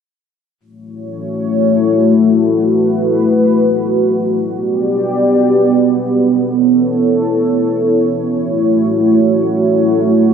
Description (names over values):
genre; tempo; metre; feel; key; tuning
breakbeat; free time; none; none; F# phrygian; A4 = 443 Hz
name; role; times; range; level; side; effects
dark analog pad; sustained chords; 1.0-10.3 s; A3 to D5; -11 LUFS; equal; chorus
room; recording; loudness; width
moderate lush hall reverb, RT60 2.6 s; none; -11 LUFS; side -7 dB against mid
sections
0.6-10.3 A section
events
none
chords
0.6 F#m7; 4.4 Gmaj7; 6.4 Aadd9; 8.3 F#m7